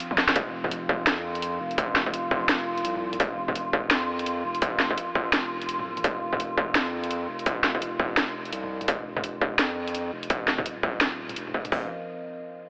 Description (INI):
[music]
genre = half-time drum and bass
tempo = 169 BPM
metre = 4/4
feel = swing 60% on 16ths, half-time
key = unclear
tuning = A4 = 435 Hz
[part]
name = dark analog pad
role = sustained chords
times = 0.0-11.9 s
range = F3 to G5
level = -40 LUFS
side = equal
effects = chorus, sidechain pumping
[part]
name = drum and bass drum kit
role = drums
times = 0.0-11.7 s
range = hi-hat, snare drum, toms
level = -26 LUFS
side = equal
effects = small room ambience
[part]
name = metallic inharmonic drone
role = texture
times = 0.0-11.7 s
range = F4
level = -34 LUFS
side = equal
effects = chorus, built-in reverb
[part]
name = saturated sub bass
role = bass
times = 0.4-11.9 s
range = Eb1 to F2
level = -35 LUFS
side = equal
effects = none
[part]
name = industrial drum kit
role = drums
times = 0.4-11.8 s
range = hi-hat, kick drum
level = -27 LUFS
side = equal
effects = distortion, small room ambience
[sound]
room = moderate huge ambient reverb, RT60 4.2 s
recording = AM radio sound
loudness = -24 LUFS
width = side -38 dB against mid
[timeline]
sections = 0.0-11.7 A section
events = break 0.0-0.4; filter sweep on analog synth pad 0.0-11.7; drum fill 0.1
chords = 0.0 F5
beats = 0.00 | 0.36 0.71 1.07 1.42 | 1.78 2.13 2.49 2.85 | 3.20 3.56 3.91 4.26 | 4.62 4.97 5.33 5.68 | 6.04 6.39 6.75 7.11 | 7.46 7.82 8.17 8.53 | 8.88 9.23 9.59 9.95 | 10.30 10.65 11.01 11.37 | 11.72